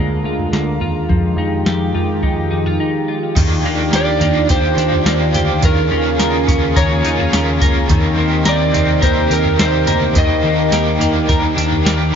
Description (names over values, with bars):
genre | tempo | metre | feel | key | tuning
dream pop | 106 BPM | 4/4 | straight | Eb major | A4 = 442 Hz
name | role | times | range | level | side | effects
lush unison pad | sustained chords | 0.0-12.2 s | C3 to Bb4 | -20 LUFS | right 1 dB | chorus
semi-hollow electric guitar | arpeggios | 0.0-12.2 s | D3 to Bb4 | -20 LUFS | left 4 dB | analog chorus, ping-pong delay
vintage muted picked electric bass | bass | 0.0-12.1 s | Db2 to F2 | -20 LUFS | equal | none
soft vintage rhythm box | drums | 0.4-12.0 s | crash cymbal, kick drum, snare drum, tambourine, toms | -18 LUFS | equal | none
cranked stack guitar | accompaniment | 3.4-12.2 s | Eb3 to Bb4 | -22 LUFS | right 1 dB | overdrive, tremolo, lush chorus
electric slide guitar | melody | 4.0-11.8 s | Bb4 to Eb5 | -20 LUFS | right 3 dB | ping-pong delay
room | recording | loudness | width
light reverb | nothing above 7.5 kHz | -13 LUFS | side -7 dB against mid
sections
0.0-3.4 A section; 3.4-12.2 B section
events
none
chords
0.0 Bb7/D; 1.1 Fm9; 3.4 Ebmaj9; 5.6 Bbm7/Eb; 7.9 Cm7/Eb; 10.2 Ebmaj7